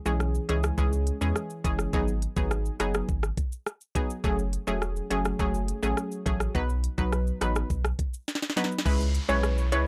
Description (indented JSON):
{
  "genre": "dancehall",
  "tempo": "104 BPM",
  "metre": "4/4",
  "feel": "straight",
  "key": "C# minor",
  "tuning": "A4 = 440 Hz",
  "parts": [
    { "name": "analog pluck", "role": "accompaniment", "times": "0.1-9.9 s", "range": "E3 to B4", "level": "-32 LUFS", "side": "equal", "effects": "chorus" },
    { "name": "sub bass with octave", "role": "bass", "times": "0.1-9.9 s", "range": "E1 to E2", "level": "-31 LUFS", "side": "equal", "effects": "none" },
    { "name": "afro-pop drum kit", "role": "drums", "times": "0.1-9.9 s", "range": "crash cymbal, hi-hat, kick drum, rim click, shaker, snare drum", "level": "-32 LUFS", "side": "equal", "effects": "none" },
    { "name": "downlifter", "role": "sound effects", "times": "8.9-9.9 s", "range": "none", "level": "-42 LUFS", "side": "equal", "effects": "none" },
    { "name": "steel pan", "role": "melody", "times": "9.3-9.8 s", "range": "C#5", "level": "-30 LUFS", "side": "equal", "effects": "analog delay" }
  ],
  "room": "little or no reverb",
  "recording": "dry, gritty hardware recording, transformer saturation",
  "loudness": "-28 LUFS",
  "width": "mono",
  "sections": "0.0-8.9 A section; 8.9-9.9 B section",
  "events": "drum fill 8.3-8.9",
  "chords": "0.0 C#m; 1.9 G#m7; 4.2 F#madd9; 6.5 B; 8.9 C#m7"
}